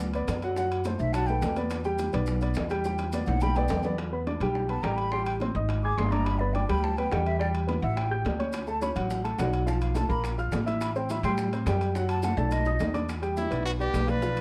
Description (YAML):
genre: Afro-Cuban jazz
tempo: 211 BPM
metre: 4/4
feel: straight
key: E minor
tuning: A4 = 440 Hz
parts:
  - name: warm upright piano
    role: accompaniment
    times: 0.0-14.4 s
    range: F3 to G#6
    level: -33 LUFS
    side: equal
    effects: none
  - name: upright bass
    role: bass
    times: 0.0-14.4 s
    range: G1 to A2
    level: -32 LUFS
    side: equal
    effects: none
  - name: bongos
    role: percussion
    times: 0.0-14.4 s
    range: none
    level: -42 LUFS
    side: equal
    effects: none
  - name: congas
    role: percussion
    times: 0.0-14.4 s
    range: none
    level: -39 LUFS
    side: equal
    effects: none
  - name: maracas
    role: percussion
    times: 0.0-4.0, 8.5-14.4 s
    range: none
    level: -52 LUFS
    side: equal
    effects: none
  - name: timbales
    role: percussion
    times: 0.1-14.4 s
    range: none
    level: -42 LUFS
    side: equal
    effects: none
  - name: breathy mellow silver concert flute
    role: second line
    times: 1.0-14.4 s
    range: G4 to D6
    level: -36 LUFS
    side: equal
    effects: none
  - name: bright trumpet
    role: melody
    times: 13.4-14.4 s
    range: E4 to B4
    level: -32 LUFS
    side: equal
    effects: none
room: moderate studio reverb, RT60 0.9 s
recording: dark, warm production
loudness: -28 LUFS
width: mono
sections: 0.0-4.0 A section; 4.0-13.1 A section; 13.1-14.4 B section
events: flute solo 0.0-13.1; drum fill 2.8-4.0, 12.4-13.1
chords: 0.0 Gmaj7 (rootless); 0.6 F#dim; 1.1 B5; 1.7 Em7; 5.1 Am7; 5.7 G#5; 6.3 G6; 7.4 Em; 8.0 A7; 8.5 Dmaj7; 9.7 Fadd11; 10.2 A#5; 10.8 Am7; 11.9 Bm7; 12.5 B7; 13.1 Em7